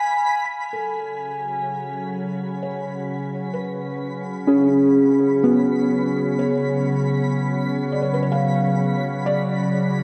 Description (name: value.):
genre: ambient.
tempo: 63 BPM.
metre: 3/4.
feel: straight.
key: unclear.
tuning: A4 = 440 Hz.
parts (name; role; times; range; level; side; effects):
muted felt-like synth keys; arpeggios; 0.0-9.0 s; B3 to Ab5; -23 LUFS; equal; chorus, shimmer reverb, delay.
twinkling granular texture; texture; 0.0-10.0 s; B5; -35 LUFS; equal; built-in reverb, shimmer reverb.
felt-muted upright piano; melody; 0.7-10.0 s; F#4 to E#5; -32 LUFS; equal; shimmer reverb, delay.
organ-like drone; drone; 1.2-10.0 s; C#3 to F#3; -26 LUFS; equal; ensemble chorus, built-in reverb.
room: wet lush hall reverb, RT60 2.7 s.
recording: worn, warbling old tape, cassette tape, warbly pitch drift.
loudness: -21 LUFS.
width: mono.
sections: 0.7-10.0 A section.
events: fade-in on synth texture 0.7-10.0; fade-in on felt piano 0.7-10.0.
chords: 0.0 Fdim (rootless); 0.7 C#7sus4; 9.3 Bmadd9/C#.